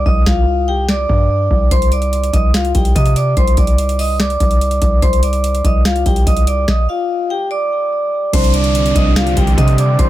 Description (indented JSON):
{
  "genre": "hip hop, trap",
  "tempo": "145 BPM",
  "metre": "4/4",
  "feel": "half-time",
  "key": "C minor",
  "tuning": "A4 = 440 Hz",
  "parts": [
    { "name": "hard-hitting 808-style bass", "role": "bass", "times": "0.0-10.1 s", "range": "C2 to C3", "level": "-16 LUFS", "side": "equal", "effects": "none" },
    { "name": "vibraphone with medium hard mallets", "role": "melody", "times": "0.1-10.1 s", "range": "F4 to Eb6", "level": "-18 LUFS", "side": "equal", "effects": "ping-pong delay" },
    { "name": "booming analog drum machine", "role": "drums", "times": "0.1-10.1 s", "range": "crash cymbal, hi-hat, kick drum, snare drum", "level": "-15 LUFS", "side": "equal", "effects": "none" },
    { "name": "overdriven tine electric piano", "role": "accompaniment", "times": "8.3-10.1 s", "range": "C3 to D4", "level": "-19 LUFS", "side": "right 5 dB", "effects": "none" },
    { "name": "sweeping resonant pad", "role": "sustained chords", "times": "8.3-10.1 s", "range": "D3 to D5", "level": "-23 LUFS", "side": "left 1 dB", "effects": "chorus" },
    { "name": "downlifter", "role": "sound effects", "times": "8.3-10.1 s", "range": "none", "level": "-25 LUFS", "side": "equal", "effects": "none" }
  ],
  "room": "little or no reverb",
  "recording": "none",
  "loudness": "-12 LUFS",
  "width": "side -14 dB against mid",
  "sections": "0.0-8.3 A section; 8.3-10.1 B section",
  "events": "break 0.0-1.7; stop 6.7-8.3",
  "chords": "0.0 Csus2"
}